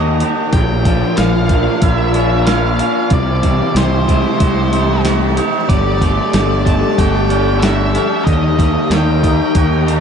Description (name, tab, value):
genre	rock, shoegaze and dream pop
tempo	93 BPM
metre	4/4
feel	straight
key	unclear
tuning	A4 = 440 Hz
part	octave-fuzz lead guitar	melody	0.0-10.0 s	C5 to A5	-23 LUFS	left 1 dB	distortion, diffuse ambient delay
part	string machine, full ensemble	sustained chords	0.0-10.0 s	F4 to Bb5	-21 LUFS	equal	ensemble chorus
part	raw garage guitar	riff	0.0-10.0 s	Bb2 to G4	-19 LUFS	left 6 dB	overdrive, ensemble chorus
part	twangy electric guitar	riff	0.0-10.0 s	Bb2 to G4	-20 LUFS	right 7 dB	reverse reverb
part	fuzz fingered electric bass	bass	0.0-10.0 s	G1 to Eb2	-16 LUFS	equal	overdrive
part	crisp 8-bit digital drum machine	drums	0.2-10.0 s	hi-hat, kick drum, snare drum	-18 LUFS	equal	none
room	wet huge ambient reverb, RT60 8.6 s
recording	dreamy mix soaked in reverb, nothing above 10.8 kHz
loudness	-12 LUFS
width	side -7 dB against mid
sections	0.0-10.0 A section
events	none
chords	0.0 Eb; 0.5 Bb; 3.1 C6; 5.7 Gsus2; 8.3 Eb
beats	| 0.53 1.17 1.82 2.46 | 3.11 3.75 4.39 5.04 | 5.68 6.33 6.97 7.62 | 8.27 8.91 9.55